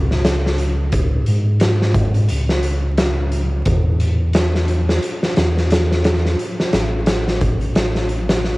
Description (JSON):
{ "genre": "trip hop", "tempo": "88 BPM", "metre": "4/4", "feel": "swing 58% on 16ths", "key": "C# minor", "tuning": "A4 = 440 Hz", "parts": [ { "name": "round analog bass", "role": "bass", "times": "0.0-8.6 s", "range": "A1 to G#2", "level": "-18 LUFS", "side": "equal", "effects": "none" }, { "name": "oversized low-tuned drum kit", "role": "drums", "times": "0.1-8.6 s", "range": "hi-hat, kick drum, snare drum", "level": "-18 LUFS", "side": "equal", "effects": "none" } ], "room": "little or no reverb", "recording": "home recording on cassette, vinyl crackle", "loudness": "-15 LUFS", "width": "side -21 dB against mid", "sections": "0.0-8.6 A section", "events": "none", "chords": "none", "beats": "0.25 | 0.93 1.61 2.29 2.98 | 3.66 4.34 5.02 5.70 | 6.38 7.07 7.75 8.43" }